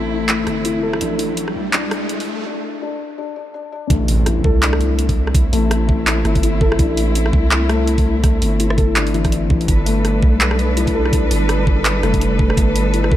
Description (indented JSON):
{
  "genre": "half-time drum and bass",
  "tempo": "166 BPM",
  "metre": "4/4",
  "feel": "swing 58% on 16ths, half-time",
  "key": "A minor",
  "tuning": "A4 = 445 Hz",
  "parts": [
    { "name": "warm symphonic cello section", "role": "sustained chords", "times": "0.0-13.2 s", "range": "G3 to B4", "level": "-24 LUFS", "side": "equal", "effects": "sidechain pumping" },
    { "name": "felt-muted upright piano", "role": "arpeggios", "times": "0.0-13.2 s", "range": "E3 to A4", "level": "-21 LUFS", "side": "left 3 dB", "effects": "low-pass filter, dub echo" },
    { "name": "long sustained 808-style bass", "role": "bass", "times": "0.0-13.2 s", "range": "F1 to C2", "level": "-19 LUFS", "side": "right 1 dB", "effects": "none" },
    { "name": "riser and impact", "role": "sound effects", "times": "0.1-5.3 s", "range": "none", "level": "-27 LUFS", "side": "right 2 dB", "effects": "none" },
    { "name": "drum and bass drum kit", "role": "drums", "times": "0.3-13.1 s", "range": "handclaps, hi-hat, rim click", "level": "-22 LUFS", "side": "right 1 dB", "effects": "overdrive" },
    { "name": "electronic kick drum", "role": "drums", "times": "3.9-13.2 s", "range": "none", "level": "-17 LUFS", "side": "right 1 dB", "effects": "overdrive" }
  ],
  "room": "light reverb, digital ambience",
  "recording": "high-pass filter",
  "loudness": "-14 LUFS",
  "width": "side -13 dB against mid",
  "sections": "0.0-3.9 A section; 3.9-13.2 B section",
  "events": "build-up 0.0-3.9; riser 0.1-2.5; filter sweep on felt piano 0.0-3.9; filter sweep 0.0-3.9; break 2.5-3.9; drop 3.9-13.2; impact 3.9-5.3",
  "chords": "0.0 Am; 9.7 Gadd9"
}